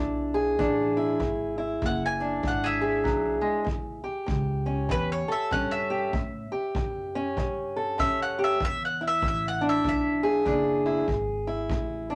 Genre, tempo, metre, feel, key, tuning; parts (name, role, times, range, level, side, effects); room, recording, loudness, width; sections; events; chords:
acoustic country blues, solo or duo; 97 BPM; 4/4; swing 61% on 8ths; E mixolydian; A4 = 439 Hz
fingerpicked acoustic archtop guitar; accompaniment; 0.0-12.2 s; A2 to A4; -29 LUFS; equal
upright bass; bass; 0.0-12.2 s; F#1 to A2; -37 LUFS; equal
kick drum; drums; 0.6-11.9 s; -36 LUFS; equal
bowl-back mandolin; melody; 1.9-11.1 s; G#4 to G#5; -31 LUFS; equal
wet small room reverb, RT60 0.5 s; -27 LUFS; mono
0.0-12.2 A section
0.0 E7; 3.7 A7; 8.6 E7